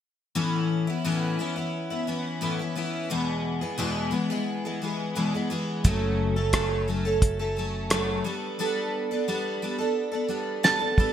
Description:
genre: folk rock and heartland rock.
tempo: 88 BPM.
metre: 4/4.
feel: straight.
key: A major.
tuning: A4 = 441 Hz.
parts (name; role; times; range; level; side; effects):
picked steel-string acoustic guitar; accompaniment; 0.4-11.1 s; E2 to A4; -26 LUFS; left 1 dB; analog chorus.
picked electric bass; bass; 5.8-8.2 s; F#1; -29 LUFS; right 1 dB; none.
cloth-damped thuddy drum kit; drums; 5.8-11.1 s; hi-hat, kick drum, rim click, snare drum; -23 LUFS; equal; gated reverb.
mandolin; melody; 10.6-11.1 s; A5; -23 LUFS; right 5 dB; none.
room: moderate plate reverb, RT60 1.9 s, studio reverb.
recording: bright 1980s-style digital production.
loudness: -24 LUFS.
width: side -10 dB against mid.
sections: 0.4-11.1 A section.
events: drum fill 10.6-11.1.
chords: 0.4 Aadd9; 3.1 E; 5.8 F#m; 8.2 Gadd9.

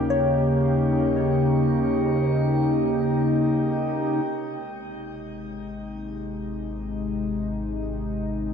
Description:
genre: ambient.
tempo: free time.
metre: none.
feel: none.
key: unclear.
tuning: A4 = 442 Hz.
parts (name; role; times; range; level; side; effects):
warm analog pad; sustained chords; 0.0-8.5 s; C3 to G4; -23 LUFS; left 1 dB; chorus, shimmer reverb.
soft synth bell; arpeggios; 0.0-4.3 s; Db5 to F5; -30 LUFS; left 2 dB; chorus, phaser, tape echo, shimmer reverb.
round analog bass; bass; 0.0-8.5 s; Ab1 to Eb2; -36 LUFS; equal; none.
glass harmonica; texture; 0.0-4.3 s; G4 to G5; -33 LUFS; right 6 dB; shimmer reverb.
room: wet concert hall reverb, RT60 2.3 s.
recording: dark, warm production.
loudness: -21 LUFS.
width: side -7 dB against mid.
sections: 0.0-4.3 A section; 4.3-8.5 B section.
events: fade-in on analog synth pad 4.3-8.5; fade-in on analog synth bass 4.3-8.5.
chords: 0.0 Eb7; 4.3 Abmaj7.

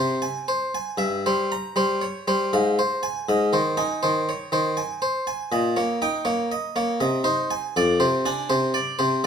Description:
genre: classical, baroque-style suite movement for harpsichord.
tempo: 80 BPM.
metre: 3/4.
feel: rubato.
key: unclear.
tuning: A4 = 440 Hz.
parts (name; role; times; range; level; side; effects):
harpsichord; solo; 0.0-9.3 s; F2 to Bb5; -21 LUFS; equal; none.
room: wet stone room reverb, RT60 1.1 s.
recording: none.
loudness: -21 LUFS.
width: side -7 dB against mid.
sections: 0.0-9.3 A section.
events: none.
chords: 0.0 Fm (rootless); 1.0 C7/G; 2.5 Fm/Ab; 3.3 Ab; 5.5 Eb7/Bb; 7.0 Ab/C; 7.8 Dm7b5/F.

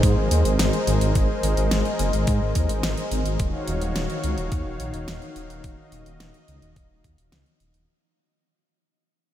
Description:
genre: synthwave.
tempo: 107 BPM.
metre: 4/4.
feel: straight.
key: unclear.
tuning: A4 = 440 Hz.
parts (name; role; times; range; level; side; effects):
warm analog pad; sustained chords; 0.0-7.9 s; Eb3 to F5; -28 LUFS; left 2 dB; chorus, sidechain pumping.
wide detuned saw bass; bass; 0.0-7.9 s; Eb1 to Ab2; -23 LUFS; equal; chorus, sidechain pumping.
electronic kick drum; drums; 0.0-7.2 s; none; -23 LUFS; equal; none.
pop drum kit; drums; 0.0-7.9 s; hi-hat, snare drum; -29 LUFS; equal; none.
room: light reverb.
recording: none.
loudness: -21 LUFS.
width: side -12 dB against mid.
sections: 0.0-7.9 A section.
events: fade-out 0.0-7.9; filter sweep on detuned saw bass 0.0-7.9.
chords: 0.0 Abadd9; 3.4 Ebm7.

